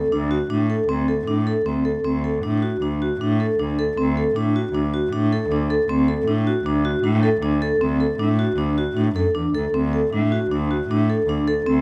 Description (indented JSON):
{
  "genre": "contemporary instrumental, chamber music in an uneven meter",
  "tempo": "156 BPM",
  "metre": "5/4",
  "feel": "straight",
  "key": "D mixolydian",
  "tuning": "A4 = 440 Hz",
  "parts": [
    { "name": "vibraphone with medium hard mallets", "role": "arpeggios", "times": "0.0-11.8 s", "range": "C4 to A4", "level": "-23 LUFS", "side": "equal", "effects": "none" },
    { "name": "warm cello", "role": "bass", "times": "0.0-11.8 s", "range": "D2 to A2", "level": "-25 LUFS", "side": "equal", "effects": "none" }
  ],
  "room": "light reverb",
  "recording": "close, detailed microphones",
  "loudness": "-21 LUFS",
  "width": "mono",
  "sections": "0.0-2.1 A section; 2.1-11.8 B section",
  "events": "none",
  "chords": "0.1 D7(no3); 2.1 D"
}